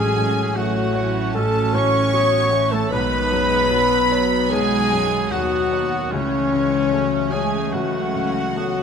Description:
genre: cinematic.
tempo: 75 BPM.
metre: 4/4.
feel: rubato.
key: unclear.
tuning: A4 = 440 Hz.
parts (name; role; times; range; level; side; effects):
warm studio violin section; melody; 0.0-8.8 s; C#5 to C#6; -29 LUFS; right 2 dB; none.
dark studio violin section; second line; 0.0-8.8 s; C#5 to C#6; -30 LUFS; equal; none.
large flute ensemble; second line; 0.0-8.8 s; C#5 to C#6; -28 LUFS; left 1 dB; none.
warm clarinet; second line; 0.0-8.8 s; F#3 to C#4; -30 LUFS; right 1 dB; none.
warm oboe; second line; 0.0-8.8 s; C#4 to C#5; -28 LUFS; right 4 dB; none.
felt-muted upright piano; accompaniment; 0.0-8.8 s; A1 to C#5; -29 LUFS; left 3 dB; none.
warm studio viola section; accompaniment; 0.0-8.8 s; D#3 to G#4; -28 LUFS; right 3 dB; none.
mellow French horn section; sustained chords; 0.0-8.8 s; C#4 to C#5; -23 LUFS; left 4 dB; none.
concert harp; arpeggios; 0.0-8.8 s; A2 to C#5; -28 LUFS; left 10 dB; none.
rich studio double bass section; bass; 0.0-8.8 s; A1 to D#2; -28 LUFS; right 6 dB; none.
warm studio cello section; bass; 0.0-8.8 s; C#3 to C#4; -28 LUFS; right 6 dB; none.
timpani; percussion; 0.0-0.9 s; A2; -32 LUFS; right 3 dB; none.
room: moderate scoring stage reverb, RT60 1.8 s.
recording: close, detailed microphones.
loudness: -17 LUFS.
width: side -6 dB against mid.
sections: 0.0-8.8 A section.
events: none.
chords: 0.0 F#m/A; 2.9 Badd9; 6.1 A/C#.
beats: 0.56 1.35 2.14 | 2.92 3.71 4.51 5.32 | 6.12 6.93 7.74 8.56.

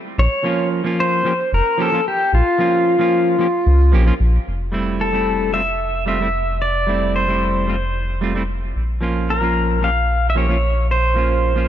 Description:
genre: sunset chillout.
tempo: 112 BPM.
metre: 4/4.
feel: straight.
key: F major.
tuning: A4 = 440 Hz.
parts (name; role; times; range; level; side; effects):
pedal steel guitar; melody; 0.2-11.7 s; F4 to F5; -19 LUFS; left 1 dB; tape echo.
round analog bass; bass; 0.2-11.7 s; F1 to Db2; -19 LUFS; equal; tube saturation.
semi-hollow electric guitar; accompaniment; 0.4-11.7 s; F3 to G4; -22 LUFS; moving between left 4 dB and right 5 dB; auto-pan.
room: light reverb.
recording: none.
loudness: -16 LUFS.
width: side -10 dB against mid.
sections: 0.0-4.5 A section; 4.5-11.7 B section.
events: none.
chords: 0.2 Bbm; 4.5 Fmaj7; 8.8 Bbm.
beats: | 0.18 0.72 1.25 1.79 | 2.32 2.86 3.40 3.93 | 4.47 5.00 5.54 6.07 | 6.61 7.14 7.68 8.22 | 8.75 9.29 9.82 10.36 | 10.89 11.43.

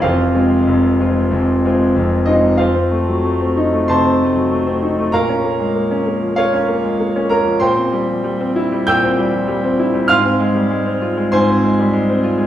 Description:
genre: classical, virtuoso piano study.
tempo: 96 BPM.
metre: 4/4.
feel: rubato.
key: F minor.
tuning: A4 = 440 Hz.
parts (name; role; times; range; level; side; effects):
bright concert grand piano; solo; 0.0-12.5 s; F1 to G6; -13 LUFS; equal; none.
room: wet large studio reverb, RT60 1.2 s.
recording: heard from further back in the room.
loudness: -13 LUFS.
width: side -11 dB against mid.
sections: 0.0-2.6 A section; 2.6-12.5 B section.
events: none.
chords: 0.0 Fm; 2.6 F7; 5.1 Bbm; 7.6 C7/Bb; 10.1 Fm/Ab.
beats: | 0.02 0.67 1.32 1.95 | 2.60 3.23 3.87 4.50 | 5.13 5.76 6.38 7.00 | 7.62 8.24 8.88 9.50 | 10.11 10.73 11.34 11.94.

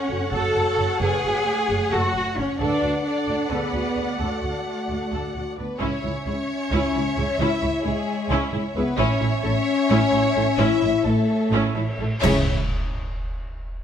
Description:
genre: cinematic, epic orchestral film score.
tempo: 263 BPM (eighths).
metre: 7/8.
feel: straight.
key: C# phrygian.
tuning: A4 = 439 Hz.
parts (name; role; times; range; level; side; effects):
rich studio violin section; melody; 0.0-12.5 s; G#4 to F#5; -31 LUFS; left 2 dB; none.
warm symphonic violin section; second line; 0.0-12.5 s; A4 to A5; -31 LUFS; left 2 dB; none.
warm symphonic viola section; accompaniment; 0.0-12.5 s; C#4 to D5; -29 LUFS; right 1 dB; none.
mellow French horn section; sustained chords; 0.0-12.4 s; G#3 to B4; -26 LUFS; left 4 dB; none.
dark symphonic cello section; bass; 0.0-12.5 s; C#2 to A4; -26 LUFS; right 1 dB; none.
warm symphonic double bass section; bass; 0.1-12.5 s; F#1 to D2; -27 LUFS; right 2 dB; none.
cymbal swell, clash cymbals and concert bass drum; percussion; 9.0-13.1 s; none; -28 LUFS; equal; none.
room: light reverb.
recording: close, detailed microphones.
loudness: -20 LUFS.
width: side -8 dB against mid.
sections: 0.0-5.8 A section; 5.8-12.2 B section; 12.2-13.8 C section.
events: band accent 12.2-12.7.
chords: 0.0 F#m; 2.6 D; 5.8 C#m; 9.0 A; 12.2 C#m.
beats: 0.10 0.33 0.56 0.78 | 1.01 1.24 1.46 1.69 1.92 2.15 2.37 | 2.60 2.83 3.06 3.28 3.51 3.74 3.97 | 4.20 4.43 4.67 4.90 5.13 5.36 5.59 | 5.82 6.05 6.27 6.50 6.72 6.95 7.18 | 7.40 7.63 7.85 8.08 8.30 8.53 8.76 | 8.98 9.21 9.43 9.66 9.89 10.12 10.35 | 10.58 10.81 11.05 11.28 11.52 11.75 11.99 | 12.23 12.47 12.71 12.95.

